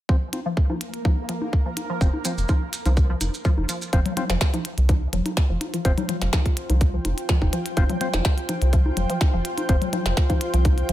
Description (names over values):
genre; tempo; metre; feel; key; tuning
minimal techno; 125 BPM; 4/4; straight; unclear; A4 = 441 Hz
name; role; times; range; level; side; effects
resonant blip pluck; riff; 0.1-10.9 s; F3; -31 LUFS; equal; analog chorus, sidechain pumping, dub echo
percussive organ stab; stabs; 0.1-9.8 s; C4 to C5; -32 LUFS; left 3 dB; chorus, ping-pong delay
electronic kick drum; drums; 0.1-10.8 s; none; -20 LUFS; equal; studio reverb
bubbling stepped-filter texture; texture; 0.7-3.9 s; Bb3 to Bb4; -36 LUFS; right 1 dB; chorus, built-in reverb, sidechain pumping
minimal click drum kit; drums; 0.3-10.9 s; hi-hat, snare drum; -29 LUFS; equal; studio reverb
bongos and congas; percussion; 0.3-10.8 s; none; -31 LUFS; left 2 dB; studio reverb
rubbery square bass; bass; 2.0-10.9 s; F1 to C2; -22 LUFS; equal; sidechain pumping
maracas; percussion; 2.0-3.9 s; none; -32 LUFS; right 3 dB; none
granular cloud pad; texture; 5.5-10.9 s; F4 to G5; -30 LUFS; left 1 dB; built-in reverb, sidechain pumping
room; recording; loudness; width
little or no reverb; none; -20 LUFS; side -14 dB against mid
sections
0.1-3.9 A section; 3.9-10.9 B section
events
filter sweep on synth pluck 0.1-3.9; filter sweep on synth stab 0.1-3.9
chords
0.1 F5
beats
| 0.09 0.57 1.05 1.53 | 2.01 2.49 2.97 3.45 | 3.93 4.41 4.89 5.37 | 5.85 6.33 6.81 7.29 | 7.77 8.25 8.73 9.21 | 9.69 10.17 10.65